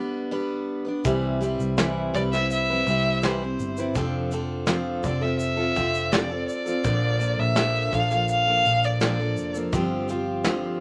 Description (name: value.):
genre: acoustic pop.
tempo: 83 BPM.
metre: 4/4.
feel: straight.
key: C major.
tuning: A4 = 440 Hz.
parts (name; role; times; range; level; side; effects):
picked steel-string acoustic guitar; accompaniment; 0.0-10.8 s; G2 to B4; -29 LUFS; equal; none.
soft brush drum kit; drums; 1.0-10.6 s; kick drum, shaker, snare drum; -29 LUFS; equal; none.
vintage muted fingered electric bass; bass; 1.1-10.8 s; F1 to C2; -30 LUFS; equal; none.
rich violin; melody; 2.1-9.5 s; C5 to F5; -27 LUFS; equal; none.
room: moderate club reverb, RT60 0.6 s.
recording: none.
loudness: -24 LUFS.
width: mono.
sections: 0.0-1.1 A section; 1.1-10.8 B section.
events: break 0.0-1.1.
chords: 0.0 G; 1.1 Cmaj7; 4.0 F6; 6.8 Bbmaj7; 9.7 G7sus4.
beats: 0.33 | 1.05 1.78 2.50 3.23 | 3.95 4.67 5.39 6.12 | 6.84 7.56 8.28 9.00 | 9.72 10.45.